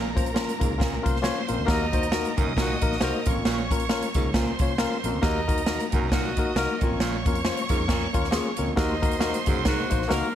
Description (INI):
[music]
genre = uptempo 1960s-style soul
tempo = 135 BPM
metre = 4/4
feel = swing 58% on 8ths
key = Eb dorian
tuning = A4 = 440 Hz
[part]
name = rich studio violin section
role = second line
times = 0.0-10.3 s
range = Bb4 to Eb6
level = -32 LUFS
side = right 2 dB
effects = none
[part]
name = mellow tine electric piano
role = accompaniment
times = 0.0-10.3 s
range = Bb3 to Db5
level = -28 LUFS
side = left 6 dB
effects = none
[part]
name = breathy baritone saxophone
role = riff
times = 0.0-9.9 s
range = Eb2 to Bb2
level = -34 LUFS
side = right 8 dB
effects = none
[part]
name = vintage muted fingered electric bass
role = bass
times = 0.0-10.2 s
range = A1 to Gb2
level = -32 LUFS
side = equal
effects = none
[part]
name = swinging big-band drum kit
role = drums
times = 0.2-10.2 s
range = hi-hat, kick drum, snare drum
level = -26 LUFS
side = equal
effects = none
[part]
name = clear saxophone section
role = second line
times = 1.7-10.3 s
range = Gb3 to Eb5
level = -32 LUFS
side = right 3 dB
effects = none
[sound]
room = light reverb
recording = none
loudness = -22 LUFS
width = side -10 dB against mid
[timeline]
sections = 0.0-10.3 A section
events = none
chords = 0.0 Bbm; 1.7 Ebm; 3.2 Bbm; 5.2 Ebm; 6.8 Bbm; 8.8 Ebm